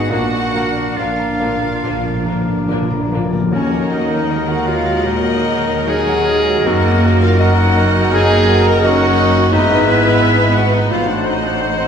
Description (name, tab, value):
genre	classical, romantic movement for piano and orchestra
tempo	69-89 BPM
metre	4/4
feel	rubato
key	Eb minor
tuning	A4 = 440 Hz
part	clear baby grand piano	melody	0.0-11.9 s	Eb2 to Eb6	-19 LUFS	left 1 dB	none
part	rich studio violin section	melody	0.0-11.9 s	Db5 to Bb5	-28 LUFS	left 3 dB	none
part	clear oboe	second line	0.0-11.9 s	F4 to C5	-25 LUFS	right 1 dB	none
part	mellow small flute group	second line	0.0-11.9 s	Db5 to Bb5	-25 LUFS	equal	none
part	mellow French horn section	sustained chords	0.0-11.9 s	Gb3 to Eb4	-26 LUFS	left 2 dB	none
part	mellow trumpet	stabs	0.0-11.9 s	Eb4 to F#4	-24 LUFS	right 1 dB	none
part	rich studio cello section	bass	0.0-11.9 s	Gb2 to Eb4	-24 LUFS	right 2 dB	none
part	mellow clarinet	second line	0.1-11.9 s	Db4 to Bb4	-20 LUFS	equal	none
part	rich studio violin section	second line	0.1-11.9 s	Bb3 to Gb5	-26 LUFS	left 5 dB	none
part	rich studio viola section	accompaniment	0.1-11.9 s	D3 to Eb4	-23 LUFS	equal	none
part	warm bassoon	accompaniment	0.1-11.9 s	Eb3 to Bb3	-26 LUFS	right 2 dB	none
part	clear studio double bass section	bass	0.1-11.9 s	Gb1 to Eb2	-22 LUFS	right 2 dB	none
part	timpani	percussion	0.1-4.6 s	Bb2 to Eb3	-23 LUFS	left 2 dB	none
room	wet recital hall reverb, RT60 1.7 s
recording	recorded in a church or concert hall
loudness	-12 LUFS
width	side -7 dB against mid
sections	0.0-3.5 A section; 3.5-11.9 B section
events	timpani fill 0.1-3.5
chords	0.1 Bb; 3.5 Ebm; 6.7 Ebm/Gb; 9.5 E/G#; 10.9 Adim7